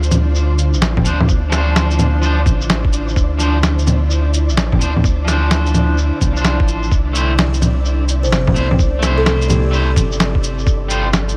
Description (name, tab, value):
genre	future garage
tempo	128 BPM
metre	4/4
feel	swing 65% on 16ths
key	D minor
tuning	A4 = 438 Hz
part	ethereal airy pad	sustained chords	0.0-11.4 s	C3 to D5	-27 LUFS	equal	ensemble chorus, built-in reverb, vintage 12-bit sampler grit, sidechain pumping
part	warm sub bass	bass	0.0-11.4 s	G1 to D2	-19 LUFS	equal	tube saturation, sidechain pumping
part	electronic cabasa, shaker, bongos and snare drum	drums	0.0-11.4 s	none	-20 LUFS	equal	none
part	flickering grainy texture	texture	0.0-11.4 s	D4 to D5	-34 LUFS	equal	built-in reverb
part	electric guitar at the edge of break-up	accompaniment	1.0-11.1 s	F3 to C5	-26 LUFS	equal	sidechain pumping, digital delay
part	electronic kick drum	drums	1.0-10.8 s	none	-18 LUFS	equal	none
part	buzzing kalimba	melody	7.4-9.7 s	G4 to D5	-26 LUFS	equal	delay
room	digital ambience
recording	none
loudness	-15 LUFS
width	mono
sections	0.0-11.4 A section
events	none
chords	0.0 Dm7; 6.9 C6; 10.7 G7sus4